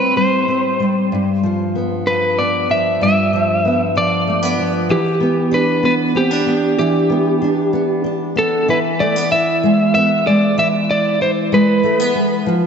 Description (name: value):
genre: pop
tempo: 64 BPM (dotted quarters)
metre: 6/8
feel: straight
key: unclear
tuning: A4 = 440 Hz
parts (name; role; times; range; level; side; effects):
- lightly driven lead guitar; melody; 0.0-12.2 s; G4 to E5; -17 LUFS; equal; diffuse ambient delay
- fingerpicked steel-string acoustic guitar; accompaniment; 0.0-12.7 s; G2 to E4; -16 LUFS; equal; double-tracked left and right
room: wet lush hall reverb, RT60 2.5 s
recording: dreamy mix soaked in reverb, nothing above 7.8 kHz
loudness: -14 LUFS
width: side -6 dB against mid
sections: 0.0-8.7 A section; 8.7-12.7 B section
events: none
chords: 0.0 Am7; 1.1 G7; 4.9 Em7; 8.7 E